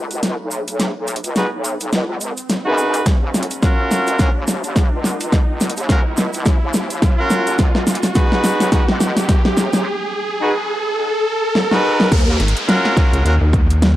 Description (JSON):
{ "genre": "glitch hop", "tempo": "106 BPM", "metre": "4/4", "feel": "swing 58% on 16ths", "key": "Eb minor", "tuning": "A4 = 436 Hz", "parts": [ { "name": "wobble bass", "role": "bass", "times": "0.0-12.4 s", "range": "Ab1 to Gb2", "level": "-24 LUFS", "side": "equal", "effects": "chorus, high-pass filter" }, { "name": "riser and downlifter", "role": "sound effects", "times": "0.1-14.0 s", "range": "none", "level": "-24 LUFS", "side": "equal", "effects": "none" }, { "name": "pop drum kit", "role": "drums", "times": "0.1-14.0 s", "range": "crash cymbal, hi-hat, snare drum", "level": "-19 LUFS", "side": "equal", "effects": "overdrive" }, { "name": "tube shaker", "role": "percussion", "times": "0.1-9.8 s", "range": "none", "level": "-30 LUFS", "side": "right 2 dB", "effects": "none" }, { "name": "bright horn section", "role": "stabs", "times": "1.4-13.4 s", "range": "Db4 to Cb5", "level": "-21 LUFS", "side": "equal", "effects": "sidechain pumping, low-pass filter, analog delay" }, { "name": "electronic kick drum", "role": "drums", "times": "3.1-13.7 s", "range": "none", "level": "-15 LUFS", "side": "equal", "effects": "overdrive" }, { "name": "rubbery square bass", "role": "bass", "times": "12.4-14.0 s", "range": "Ab1 to Eb2", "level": "-14 LUFS", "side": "equal", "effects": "none" } ], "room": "light reverb", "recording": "dry, gritty hardware recording, vinyl crackle", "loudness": "-15 LUFS", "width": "side -14 dB against mid", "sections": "0.0-12.1 A section; 12.1-14.0 B section", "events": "build-up 0.0-12.1; drum fill 0.0-9.9, 11.6-12.1; riser 0.1-12.1; break 9.9-12.1; drop 12.1-14.0", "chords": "0.0 Db7sus4; 3.1 Ebm7; 7.6 Db7sus4; 12.1 Ebm7", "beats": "0.23 | 0.80 1.36 1.93 2.50 | 3.06 3.63 4.19 4.76 | 5.33 5.89 6.46 7.03 | 7.59 8.16 8.72 9.29 | 9.86 10.42 10.99 11.55 | 12.12 12.69 13.25 13.82" }